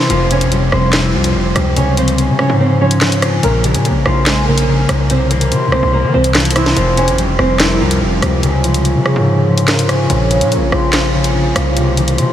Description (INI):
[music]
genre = hip hop, drill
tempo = 144 BPM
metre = 4/4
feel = half-time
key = F harmonic minor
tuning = A4 = 437 Hz
[part]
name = flamenco guitar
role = melody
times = 0.0-8.4 s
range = E3 to Db5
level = -19 LUFS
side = right 2 dB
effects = wide subtle chorus, low-pass filter, tape echo
[part]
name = concert harp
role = accompaniment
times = 0.0-12.3 s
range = F2 to Db5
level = -15 LUFS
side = left 2 dB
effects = low-pass filter
[part]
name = distorted 808-style bass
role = bass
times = 0.1-12.3 s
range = F1 to E3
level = -18 LUFS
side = equal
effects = distortion
[part]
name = drill drum kit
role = drums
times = 0.1-12.3 s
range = handclaps, hi-hat, rim click, snare drum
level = -18 LUFS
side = equal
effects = none
[part]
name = warm velvety synth lead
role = second line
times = 6.8-11.3 s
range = Ab4 to Db5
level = -21 LUFS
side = right 3 dB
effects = chorus, tape echo
[part]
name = deep dark ambient pad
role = sustained chords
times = 8.2-12.3 s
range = C3 to F4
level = -22 LUFS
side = right 1 dB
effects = chorus, built-in reverb
[sound]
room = moderate huge ambient reverb, RT60 8.3 s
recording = dreamy mix soaked in reverb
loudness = -11 LUFS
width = side -11 dB against mid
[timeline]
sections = 0.0-12.3 A section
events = none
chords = 0.1 Fsus2; 1.8 Db; 3.4 Bbmadd9; 5.1 C; 6.8 Fsus2; 8.4 Db; 10.1 Bbmadd9; 11.8 C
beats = | 0.10 0.52 0.93 1.35 | 1.76 2.18 2.60 3.02 | 3.43 3.85 4.26 4.68 | 5.10 5.51 5.93 6.35 | 6.76 7.18 7.60 8.02 | 8.43 8.85 9.27 9.68 | 10.10 10.52 10.93 11.35 | 11.77 12.18